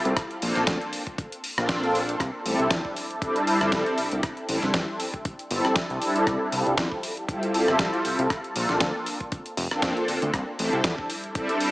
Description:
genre	nu-disco, nu disco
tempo	118 BPM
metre	4/4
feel	swing 55% on 16ths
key	C mixolydian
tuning	A4 = 441 Hz
part	fat analog bass	bass	0.0-10.9 s	F1 to F2	-30 LUFS	equal	none
part	dusty soul sampler-style drum kit	drums	0.1-11.7 s	hi-hat, rim click, snare drum	-29 LUFS	equal	none
part	electronic kick drum	drums	0.2-11.5 s	none	-33 LUFS	equal	none
part	warm analog pad	accompaniment	0.4-11.7 s	G3 to A4	-25 LUFS	equal	ensemble chorus, cassette tape, sidechain pumping, tape echo
room	moderate echo chamber reverb, RT60 1.4 s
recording	small speaker sound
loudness	-23 LUFS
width	side -19 dB against mid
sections	0.0-11.7 A section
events	none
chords	0.2 Bbmaj7; 2.2 C6; 6.3 Fmaj9/C; 8.3 Bbmaj7; 10.3 C6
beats	| 0.17 0.68 1.19 1.69 | 2.20 2.71 3.22 3.73 | 4.24 4.74 5.25 5.76 | 6.27 6.78 7.29 7.79 | 8.30 8.81 9.32 9.83 | 10.34 10.85 11.35

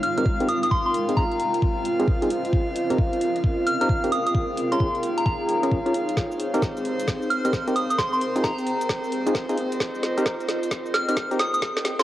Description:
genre	UK garage, two-step garage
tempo	132 BPM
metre	4/4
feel	swing 64% on 16ths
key	Ab major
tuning	A4 = 435 Hz
part	soft synth bell	melody	0.0-12.0 s	Bb5 to F6	-25 LUFS	equal	chorus, phaser
part	airy breathy pad	sustained chords	0.0-12.0 s	C4 to F5	-28 LUFS	equal	chorus, sidechain pumping, cassette tape
part	garage drum kit	drums	0.0-12.0 s	hi-hat, shaker, snare drum	-30 LUFS	equal	cassette tape
part	granular cloud pad	texture	0.0-12.0 s	Ab3 to G5	-30 LUFS	right 1 dB	built-in reverb, sidechain pumping, cassette tape
part	percussive organ stab	stabs	0.2-12.0 s	C4 to Bb4	-26 LUFS	equal	chorus, cassette tape, analog delay
part	electronic kick drum	drums	0.3-11.7 s	none	-24 LUFS	equal	cassette tape
room	moderate spring reverb, RT60 1.6 s, digital ambience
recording	home recording on cassette, high-pass filter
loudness	-21 LUFS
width	side -14 dB against mid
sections	0.0-12.0 A section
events	build-up 0.0-12.0; filter sweep on synth stab 0.0-12.0; filter sweep 0.0-12.0; drum fill 6.2-12.0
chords	0.0 Abmaj9; 0.7 Dbmaj9; 2.5 Abmaj9; 4.1 Eb9sus4; 6.2 Ab69/C; 11.4 Ebsus4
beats	0.26 | 0.71 1.17 1.62 2.08 | 2.53 2.98 3.44 3.89 | 4.35 4.80 5.26 5.71 | 6.17 6.62 7.08 7.53 | 7.99 8.44 8.89 9.35 | 9.80 10.26 10.71 11.17 | 11.62

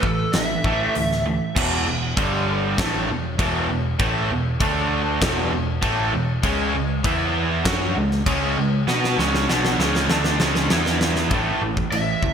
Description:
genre	hard rock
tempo	98 BPM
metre	4/4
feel	straight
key	unclear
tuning	A4 = 440 Hz
part	lead guitar through a small cranked amp	melody	0.0-1.2, 11.9-12.3 s	A4 to E5	-25 LUFS	equal	overdrive, lush chorus, digital delay
part	cranked stack guitar	riff	0.0-12.3 s	E2 to B4	-26 LUFS	left 9 dB	overdrive, ensemble chorus
part	cranked stack guitar	riff	0.0-12.3 s	E2 to B4	-24 LUFS	right 8 dB	overdrive
part	overdriven picked electric bass	bass	0.0-12.3 s	E1 to B2	-26 LUFS	left 1 dB	none
part	huge arena drum kit	drums	0.0-12.3 s	crash cymbal, hi-hat, kick drum, snare drum	-24 LUFS	left 1 dB	gated reverb
room	moderate lush hall reverb, RT60 1.9 s, small room ambience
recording	bright 1980s-style digital production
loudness	-19 LUFS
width	side -7 dB against mid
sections	0.0-1.6 A section; 1.6-11.3 B section; 11.3-12.3 C section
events	drum fill 8.9-11.3; lead electric guitar solo 11.3-12.3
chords	0.0 A5; 1.6 E5; 2.2 G5; 2.8 E5; 4.6 D5; 5.2 E5; 6.4 C#5; 7.0 E5; 7.7 C#5; 10.7 E5; 11.3 A5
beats	0.34 0.95 | 1.56 2.17 2.78 3.39 | 4.00 4.61 5.22 5.83 | 6.44 7.05 7.66 8.26 | 8.87 9.48 10.09 10.70 | 11.31 11.92

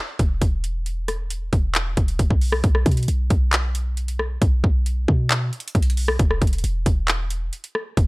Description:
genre	hip hop, trap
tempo	135 BPM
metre	4/4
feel	half-time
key	unclear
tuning	A4 = 440 Hz
part	clean 808-style bass	bass	0.2-8.1 s	E1 to B2	-22 LUFS	equal	none
part	trap drum kit	drums	0.2-8.1 s	handclaps, hi-hat, kick drum, rim click	-20 LUFS	equal	none
room	digital ambience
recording	dry, gritty hardware recording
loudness	-19 LUFS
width	side -25 dB against mid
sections	0.0-2.6 A section; 2.6-8.1 B section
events	none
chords	none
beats	0.42 | 0.86 1.30 1.75 2.19 | 2.64 3.08 3.53 3.97 | 4.42 4.86 5.30 5.75 | 6.19 6.64 7.08 7.53 | 7.97

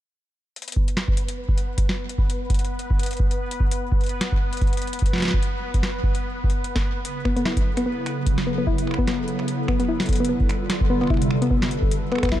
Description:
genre	IDM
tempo	148 BPM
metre	4/4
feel	swing 56% on 16ths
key	B minor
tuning	A4 = 439 Hz
part	booming analog drum machine	drums	0.6-12.4 s	finger snaps, hi-hat, snare drum	-29 LUFS	equal	digital delay
part	bubbling stepped-filter texture	texture	0.6-12.4 s	B3 to B4	-33 LUFS	equal	chorus, built-in reverb
part	electronic kick drum	drums	0.8-12.4 s	none	-22 LUFS	equal	none
part	hollow soft pad	sustained chords	7.0-12.4 s	C3 to A4	-26 LUFS	right 1 dB	ensemble chorus
part	soft round pluck	arpeggios	7.2-12.4 s	B3 to E4	-25 LUFS	left 2 dB	chorus, digital delay
room	little or no reverb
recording	dark, warm production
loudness	-20 LUFS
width	side -13 dB against mid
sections	0.6-12.4 A section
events	none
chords	0.6 N.C.; 7.0 B5; 10.3 Dm7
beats	| 0.56 0.97 1.37 1.78 | 2.18 2.59 2.99 3.40 | 3.81 4.21 4.62 5.02 | 5.43 5.83 6.24 6.64 | 7.05 7.45 7.86 8.27 | 8.67 9.07 9.48 9.89 | 10.29 10.70 11.10 11.51 | 11.91 12.32

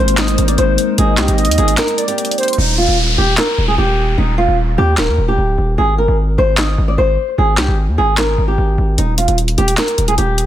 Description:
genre	hip hop, trap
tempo	150 BPM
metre	4/4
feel	half-time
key	Eb major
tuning	A4 = 440 Hz
part	flamenco guitar	melody	0.0-10.5 s	Eb4 to Eb5	-17 LUFS	equal	tape echo
part	warm velvety synth lead	second line	0.0-2.6 s	C5 to Eb5	-21 LUFS	right 4 dB	chorus, tape echo
part	mellow tine electric piano	accompaniment	0.0-2.6 s	Ab3 to C4	-22 LUFS	left 1 dB	medium stereo tremolo
part	warbly tape-like pad	sustained chords	0.0-2.5 s	Ab3 to C5	-24 LUFS	left 1 dB	chorus, built-in reverb
part	distorted 808-style bass	bass	0.0-10.5 s	D1 to Eb2	-15 LUFS	equal	distortion
part	trap drum kit	drums	0.1-10.5 s	handclaps, hi-hat, snare drum	-19 LUFS	equal	none
part	downlifter	sound effects	2.6-5.8 s	none	-21 LUFS	equal	none
room	digital ambience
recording	dense, heavily limited modern master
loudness	-12 LUFS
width	side -12 dB against mid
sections	0.0-2.6 A section; 2.6-10.5 B section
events	break 1.8-2.6; hi-hats muted 2.6-9.0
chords	0.0 Abadd9; 2.6 Eb; 5.8 N.C.; 9.0 Eb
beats	0.18 0.58 | 0.98 1.38 1.78 2.18 | 2.58 2.98 3.38 3.78 | 4.18 4.58 4.98 5.38 | 5.78 6.18 6.58 6.98 | 7.38 7.78 8.18 8.58 | 8.98 9.38 9.78 10.18

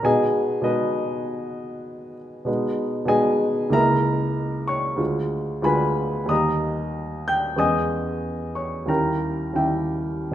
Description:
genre	classical, romantic character piece for solo piano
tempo	74-101 BPM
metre	4/4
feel	rubato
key	unclear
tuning	A4 = 438 Hz
part	clear baby grand piano	solo	0.0-10.3 s	C#2 to G6	-21 LUFS	equal	none
room	wet recital hall reverb, RT60 1.5 s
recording	nothing above 10.7 kHz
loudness	-21 LUFS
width	side -11 dB against mid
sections	0.0-10.3 A section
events	none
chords	0.1 G#m/B; 3.7 A#m7b5/C#; 5.0 Ddim7; 6.3 D#; 7.6 C#m/E; 8.9 D#7b9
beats	| 0.05 0.65 1.26 1.87 | 2.48 3.09 3.73 4.37 | 5.00 5.64 6.30 6.95 | 7.60 8.24 8.89 9.57

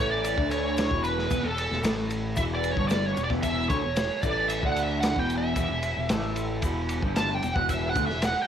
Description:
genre	psychedelic rock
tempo	113 BPM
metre	4/4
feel	straight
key	E dorian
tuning	A4 = 439 Hz
part	lead guitar through a small cranked amp	melody	0.0-8.5 s	A4 to A5	-28 LUFS	right 1 dB	wah, overdrive, slapback echo
part	bright tonewheel organ	sustained chords	0.0-8.5 s	E3 to B4	-42 LUFS	right 14 dB	none
part	electric guitar at the edge of break-up	riff	0.0-8.3 s	E2 to D4	-29 LUFS	equal	flanger, double-tracked left and right
part	growling picked electric bass	bass	0.0-8.3 s	E1 to D2	-33 LUFS	equal	overdrive
part	crunchy breakbeat drum kit	drums	0.2-8.3 s	kick drum, ride cymbal, snare drum	-30 LUFS	equal	none
part	egg shaker	percussion	0.2-8.3 s	none	-48 LUFS	left 18 dB	none
room	light reverb, small room ambience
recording	1960s-style stereo with parts hard left and right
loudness	-24 LUFS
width	side -9 dB against mid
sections	0.0-8.5 A section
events	lead electric guitar solo 0.0-8.5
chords	0.4 D5; 0.9 Em; 1.8 A5; 2.4 Em; 4.6 D5; 5.2 Em; 6.1 A5; 6.6 Em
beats	0.25 0.78 | 1.31 1.84 2.38 2.91 | 3.44 3.97 4.50 5.04 | 5.57 6.10 6.63 7.16 | 7.69 8.22

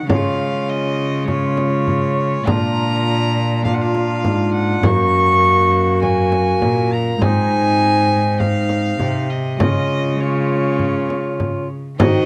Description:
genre	classical, renaissance-style consort dance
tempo	101 BPM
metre	4/4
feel	straight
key	unclear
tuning	A4 = 440 Hz
part	dark violin	melody	0.0-12.3 s	Db5 to Db6	-23 LUFS	equal	none
part	concert harp	accompaniment	0.0-12.3 s	Gb2 to Gb4	-28 LUFS	equal	none
part	rich cello	bass	0.0-12.3 s	Gb2 to Eb3	-23 LUFS	equal	none
part	tenor recorder	second line	0.1-12.3 s	Eb4 to Gb4	-26 LUFS	equal	none
part	dark bassoon	accompaniment	0.1-12.3 s	Bb3 to D4	-26 LUFS	equal	none
part	frame drum	percussion	0.1-12.3 s	none	-23 LUFS	equal	none
room	light reverb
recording	close, detailed microphones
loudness	-17 LUFS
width	mono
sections	0.0-12.0 A section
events	none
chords	0.1 Db; 2.5 Bb; 4.8 Gb; 7.2 Ab; 9.6 Db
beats	| 0.10 0.69 1.28 1.87 | 2.47 3.06 3.65 4.24 | 4.84 5.43 6.03 6.62 | 7.21 7.81 8.40 8.99 | 9.59 10.20 10.79 11.39 | 12.00

